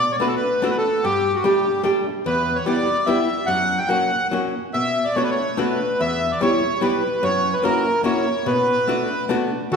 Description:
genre	musette waltz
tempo	146 BPM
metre	3/4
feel	rubato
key	B minor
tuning	A4 = 440 Hz
part	bandoneon	melody	0.0-9.8 s	F#4 to G5	-20 LUFS	equal	none
part	archtop guitar, miked and amplified	accompaniment	0.0-9.8 s	E2 to G4	-22 LUFS	left 1 dB	none
room	wet recital hall reverb, RT60 1.8 s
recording	heard from further back in the room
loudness	-18 LUFS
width	side -6 dB against mid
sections	0.0-9.7 A section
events	none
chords	0.0 Bm7; 1.0 Gsus2; 2.3 Em; 3.5 F#; 4.7 Bm7; 6.0 Em; 7.2 F#7; 8.5 Bm7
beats	0.21 0.63 | 1.04 1.45 1.85 | 2.26 2.66 3.07 | 3.48 3.89 4.31 | 4.74 5.16 5.58 | 6.00 6.41 6.81 | 7.22 7.63 8.04 | 8.46 8.87 9.29 | 9.71

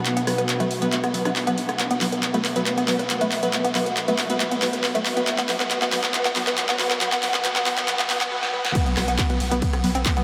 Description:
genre	driving peak-time techno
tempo	138 BPM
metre	4/4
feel	straight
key	unclear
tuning	A4 = 439 Hz
part	analog drone	drone	0.0-8.3 s	B2	-36 LUFS	equal	chorus, sidechain pumping
part	techno drum kit	drums	0.1-10.2 s	handclaps, hi-hat, ride cymbal, rim click, snare drum	-27 LUFS	equal	sidechain pumping on hats, sidechain pumping on cymbals
part	woody wave-folded pluck	riff	0.2-10.2 s	A3 to B4	-28 LUFS	equal	overdrive, subtle chorus, sidechain pumping, analog delay
part	wavetable chord stab	stabs	0.3-10.2 s	F#3 to B4	-29 LUFS	equal	sidechain pumping, analog delay
part	electronic kick drum	drums	8.8-10.1 s	none	-26 LUFS	equal	none
part	saturated sub bass	bass	9.0-10.1 s	B1	-31 LUFS	equal	tube saturation, sidechain pumping, low-pass filter
room	wet huge ambient reverb, RT60 7.9 s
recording	dreamy mix soaked in reverb, high-pass filter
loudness	-23 LUFS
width	mono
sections	0.0-8.8 A section; 8.8-10.2 B section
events	build-up 0.0-8.8; drum fill 0.0-8.3, 8.4-8.8; filter sweep on synth arpeggio sound 0.0-8.8; filter sweep 0.0-8.8; drop 8.8-10.2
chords	0.0 B5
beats	| 0.06 0.49 0.93 1.36 | 1.79 2.23 2.66 3.10 | 3.53 3.97 4.40 4.84 | 5.27 5.71 6.14 6.58 | 7.01 7.45 7.88 8.32 | 8.75 9.19 9.62 10.06

